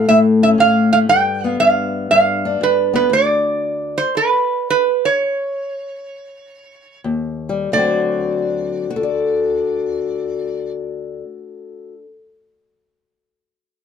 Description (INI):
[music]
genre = acoustic country blues, solo or duo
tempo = 85-118 BPM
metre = 4/4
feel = swing 67% on 8ths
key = unclear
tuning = A4 = 441 Hz
[part]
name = metal-body resonator slide guitar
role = melody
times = 0.0-10.7 s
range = B4 to G5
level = -15 LUFS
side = right 3 dB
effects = none
[part]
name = fingerpicked steel-string acoustic guitar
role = accompaniment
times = 0.0-12.1 s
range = D2 to D5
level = -18 LUFS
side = left 4 dB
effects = none
[sound]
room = light reverb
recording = dark, warm production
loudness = -15 LUFS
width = side -7 dB against mid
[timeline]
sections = 0.0-7.7 A section; 7.7-13.4 B section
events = slowing down 3.1-7.7; stop 3.1-7.0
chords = 0.0 A; 1.1 G7; 3.1 N.C.; 7.0 Eb; 7.7 D7